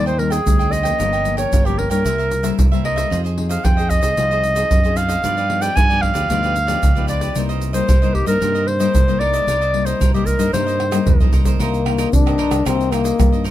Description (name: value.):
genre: samba and choro.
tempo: 113 BPM.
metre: 4/4.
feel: straight.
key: C minor.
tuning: A4 = 441 Hz.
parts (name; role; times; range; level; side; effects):
warm clarinet; melody; 0.0-11.3 s; G4 to Ab5; -20 LUFS; equal; none.
cavaquinho; accompaniment; 0.0-13.5 s; Eb4 to G5; -29 LUFS; right 8 dB; none.
nylon-string guitar; accompaniment; 0.0-13.5 s; G2 to Ab4; -25 LUFS; left 8 dB; none.
fingered electric bass; bass; 0.0-13.5 s; G1 to C3; -22 LUFS; equal; none.
egg shaker, pandeiro, surdo and tamborim; percussion; 0.1-13.5 s; none; -18 LUFS; right 1 dB; none.
breathy trombone; second line; 11.6-13.5 s; Bb3 to D4; -19 LUFS; left 5 dB; none.
room: little or no reverb.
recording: close, detailed microphones.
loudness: -15 LUFS.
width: side -13 dB against mid.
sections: 0.0-11.6 A section; 11.6-13.5 B section.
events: drum fill 10.8-11.6; trombone solo 11.6-13.5.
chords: 0.0 Abmaj7; 1.0 Gm7b5; 2.1 C7; 3.1 Fm7; 5.2 G7b13; 7.4 Cm7; 11.6 Cm9.